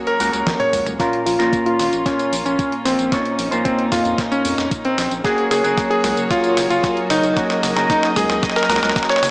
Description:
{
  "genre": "italo disco",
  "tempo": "113 BPM",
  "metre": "4/4",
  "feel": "straight",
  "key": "Bb minor",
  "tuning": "A4 = 440 Hz",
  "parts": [
    { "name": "warm chamber string section", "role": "sustained chords", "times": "0.0-9.3 s", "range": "Gb3 to Eb5", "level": "-24 LUFS", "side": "equal", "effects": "low-pass filter" },
    { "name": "electric guitar with an envelope filter", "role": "stabs", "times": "0.0-9.3 s", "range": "Bb2 to Db5", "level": "-22 LUFS", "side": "equal", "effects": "vintage 12-bit sampler grit, low-pass filter" },
    { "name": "bright electric grand piano", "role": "melody", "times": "0.1-9.3 s", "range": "C4 to Db5", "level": "-19 LUFS", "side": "equal", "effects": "low-pass filter" },
    { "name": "detuned 8-bit digital drum machine", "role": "drums", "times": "0.1-9.3 s", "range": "hi-hat, snare drum, tambourine, toms", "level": "-24 LUFS", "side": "equal", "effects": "high-pass filter on hats, high-pass filter on perc, high-pass filter on snare, high-pass filter on toms, high-pass filter on room" },
    { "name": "round analog bass", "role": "bass", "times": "0.2-9.3 s", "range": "Gb1 to F2", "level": "-29 LUFS", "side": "equal", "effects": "none" },
    { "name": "electronic kick drum", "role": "drums", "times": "0.5-9.1 s", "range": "none", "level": "-25 LUFS", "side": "equal", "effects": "none" }
  ],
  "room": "wet lush hall reverb, RT60 2.0 s",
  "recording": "small speaker sound",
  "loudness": "-15 LUFS",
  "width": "side -26 dB against mid",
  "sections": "1.0-9.3 A section",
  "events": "drum fill 0.6-1.0, 1.0-9.3; filter sweep on electric grand piano 1.0-9.3",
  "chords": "0.0 Gbadd9; 1.0 Bbm; 5.2 Gbadd9",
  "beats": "0.47 | 1.00 1.53 2.06 2.59 | 3.12 3.65 4.18 4.71 | 5.25 5.78 6.31 6.84 | 7.37 7.90 8.43 8.96"
}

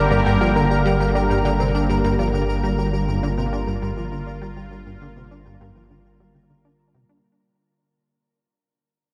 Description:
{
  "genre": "ambient, sequencer-driven space music",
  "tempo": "101 BPM",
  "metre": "4/4",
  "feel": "straight",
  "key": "G minor",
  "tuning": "A4 = 440 Hz",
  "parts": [
    { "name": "sweeping resonant pad", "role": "sustained chords", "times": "0.0-7.2 s", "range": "D3 to Bb4", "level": "-24 LUFS", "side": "equal", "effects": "chorus" },
    { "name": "soft round pluck", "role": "arpeggios", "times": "0.0-7.2 s", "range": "G4 to E6", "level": "-32 LUFS", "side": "equal", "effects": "none" },
    { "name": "plucky analog bass", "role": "riff", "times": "0.0-7.2 s", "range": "G2 to D4", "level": "-28 LUFS", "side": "equal", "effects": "lush chorus, delay" },
    { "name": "round analog bass", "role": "bass", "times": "0.0-7.2 s", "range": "G1", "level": "-28 LUFS", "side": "equal", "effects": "tube saturation" },
    { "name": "pulsing gated texture", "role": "texture", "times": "0.0-7.3 s", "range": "Bb4 to Bb5", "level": "-33 LUFS", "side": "equal", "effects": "chorus, built-in reverb" }
  ],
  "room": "wet huge ambient reverb, RT60 8.1 s",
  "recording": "dreamy mix soaked in reverb",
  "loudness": "-20 LUFS",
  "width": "mono",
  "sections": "0.0-7.2 A section",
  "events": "fade-out 0.0-7.2; filter sweep on analog synth bass 0.0-7.2",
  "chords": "0.0 Gm",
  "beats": "| 0.11 0.70 1.30 1.89 | 2.49 3.08 3.67 4.27 | 4.86 5.46 6.05 6.64"
}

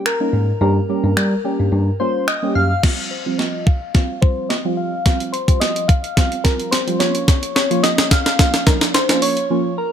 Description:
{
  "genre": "dance-pop",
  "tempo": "108 BPM",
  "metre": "4/4",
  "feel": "straight",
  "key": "unclear",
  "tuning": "A4 = 440 Hz",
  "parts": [
    { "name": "soft struck synth lead", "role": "melody", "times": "0.0-9.9 s", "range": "Bb4 to F5", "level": "-22 LUFS", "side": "left 2 dB", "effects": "chorus, low-pass filter" },
    { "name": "deep mellow chord stab", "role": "accompaniment", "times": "0.0-9.8 s", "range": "F3 to G4", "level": "-23 LUFS", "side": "right 2 dB", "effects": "chorus, sidechain pumping, low-pass filter" },
    { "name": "clean 12-bit digital drum machine", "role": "drums", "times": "0.1-9.5 s", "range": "crash cymbal, finger snaps, hi-hat, kick drum, snare drum", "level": "-16 LUFS", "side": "equal", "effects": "overdrive" },
    { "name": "bell-like tine electric piano", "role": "bass", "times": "0.3-2.7 s", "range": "Gb2 to G3", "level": "-17 LUFS", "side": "equal", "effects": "sidechain pumping" }
  ],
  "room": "little or no reverb",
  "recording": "none",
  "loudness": "-15 LUFS",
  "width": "side -9 dB against mid",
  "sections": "0.0-2.8 A section; 2.8-9.9 B section",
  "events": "kick muted 0.6-2.8; build-up 2.8-9.9; drum fill 2.8-9.5; filter sweep 2.8-9.9; break 9.5-9.9",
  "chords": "0.0 Gdim; 2.8 Fsus2; 7.0 Bbm",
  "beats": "0.06 | 0.61 1.17 1.73 2.28 | 2.84 3.39 3.95 4.50 | 5.06 5.61 6.17 6.72 | 7.28 7.84 8.39 8.95 | 9.50"
}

